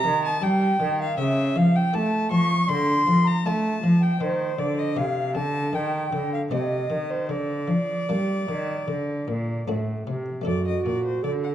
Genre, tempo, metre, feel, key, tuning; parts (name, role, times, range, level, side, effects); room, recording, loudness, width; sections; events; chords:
classical, baroque-style sonata movement with continuo; 78 BPM; 4/4; straight; A4 = 435 Hz
rich violin; melody; 0.0-11.5 s; C5 to C#6; -29 LUFS; left 5 dB
mellow baroque flute; second line; 0.0-11.5 s; F#4 to C#6; -28 LUFS; right 5 dB
buff-stop harpsichord; accompaniment; 0.0-11.5 s; F#2 to A4; -27 LUFS; left 1 dB
rich cello; bass; 0.0-11.5 s; F#2 to A3; -26 LUFS; right 1 dB
wet recital hall reverb, RT60 1.8 s; dark, warm production; -21 LUFS; side -11 dB against mid
0.0-10.5 A section; 10.5-11.5 B section
0.0 Cm (rootless); 1.2 A7/C#; 2.7 Dm; 4.2 Cm; 5.7 Am7b5; 7.3 Gm/D; 8.9 D; 10.5 D/F#